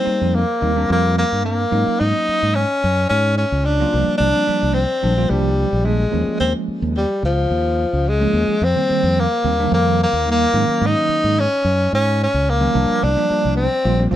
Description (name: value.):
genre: electric jazz fusion.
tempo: 109 BPM.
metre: 4/4.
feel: swing 53% on 16ths.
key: unclear.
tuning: A4 = 442 Hz.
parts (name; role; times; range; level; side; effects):
breathy tenor saxophone; melody; 0.0-14.2 s; F3 to Eb4; -18 LUFS; left 1 dB; none.
bell-like tine electric piano; accompaniment; 0.0-14.2 s; Eb3 to F4; -22 LUFS; right 3 dB; medium stereo tremolo.
fingered electric bass; bass; 0.1-14.2 s; Bb1 to Ab2; -20 LUFS; equal; none.
room: moderate studio ambience, RT60 0.5 s.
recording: none.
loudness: -15 LUFS.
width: side -12 dB against mid.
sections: 0.0-14.2 A section.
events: none.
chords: 0.0 F9sus4; 1.7 Ab9sus4; 3.9 C9sus4; 6.1 Eb9sus4; 8.6 F9sus4; 10.5 Ab9sus4; 12.8 C9sus4.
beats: 0.34 0.89 1.45 | 2.00 2.55 3.10 3.65 | 4.21 4.76 5.31 5.86 | 6.41 6.96 7.51 8.07 | 8.62 9.17 9.72 10.27 | 10.82 11.37 11.93 12.48 | 13.03 13.58 14.13.